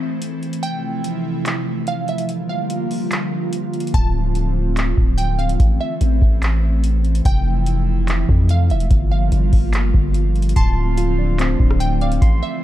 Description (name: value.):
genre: hip hop, atmospheric cloud-rap.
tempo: 145 BPM.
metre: 4/4.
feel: half-time.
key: unclear.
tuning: A4 = 439 Hz.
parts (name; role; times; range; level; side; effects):
glassy wavetable pluck; melody; 0.0-12.6 s; E5 to A5; -28 LUFS; right 3 dB; chorus, ping-pong delay.
airy breathy pad; sustained chords; 0.0-12.6 s; C3 to F4; -23 LUFS; right 1 dB; chorus.
booming analog drum machine; drums; 0.2-12.4 s; handclaps, hi-hat, kick drum, rim click; -18 LUFS; equal; none.
long sustained 808-style bass; bass; 3.9-12.4 s; D1 to F2; -17 LUFS; equal; none.
soft electric-piano-like synth keys; arpeggios; 10.6-12.6 s; D3 to C6; -25 LUFS; left 3 dB; chorus, ping-pong delay.
room: little or no reverb.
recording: dark, warm production.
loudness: -16 LUFS.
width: side -13 dB against mid.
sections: 0.0-10.6 A section; 10.6-12.6 B section.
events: break 0.0-3.9.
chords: 0.0 Am; 0.6 Fmaj7; 2.3 Gm7; 3.9 Dm7; 5.6 Am; 7.3 Fmaj7; 8.9 Gm7; 10.6 Dm7.